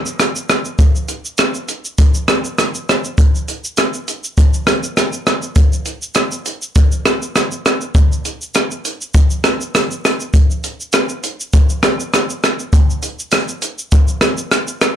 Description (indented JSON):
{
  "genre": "indie pop",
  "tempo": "101 BPM",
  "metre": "4/4",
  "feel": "swing 55% on 16ths",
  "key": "none",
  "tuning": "none",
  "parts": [
    { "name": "compact cocktail drum kit", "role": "drums", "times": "0.1-15.0 s", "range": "hi-hat, kick drum, rim click, shaker", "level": "-13 LUFS", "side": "equal", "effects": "soft clipping on snare" }
  ],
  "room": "moderate small room reverb, RT60 0.5 s",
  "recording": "blown-out, overdriven recording, overdrive",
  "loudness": "-14 LUFS",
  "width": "side -10 dB against mid",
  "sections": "0.0-15.0 A section",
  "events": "none",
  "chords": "none"
}